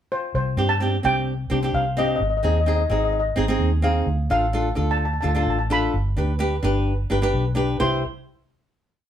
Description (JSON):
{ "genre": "calypso", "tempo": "129 BPM", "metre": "4/4", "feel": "straight", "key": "unclear", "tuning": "A4 = 441 Hz", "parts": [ { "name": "steel pan", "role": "melody", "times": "0.1-8.0 s", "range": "C5 to C6", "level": "-24 LUFS", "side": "left 2 dB", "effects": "none" }, { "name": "vintage muted fingered electric bass", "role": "bass", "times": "0.3-8.0 s", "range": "G1 to G2", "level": "-23 LUFS", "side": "equal", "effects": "none" }, { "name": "flamenco guitar", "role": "accompaniment", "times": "0.6-8.0 s", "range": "C4 to C5", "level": "-24 LUFS", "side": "equal", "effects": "none" } ], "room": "moderate studio reverb, RT60 0.7 s", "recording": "band playing live in one room", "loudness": "-20 LUFS", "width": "side -10 dB against mid", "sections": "0.0-0.3 pickup bar; 0.3-7.8 verse; 7.8-9.1 final chord", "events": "none", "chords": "0.3 Csus2; 2.2 Ab; 4.1 Dm; 5.9 G; 7.8 C" }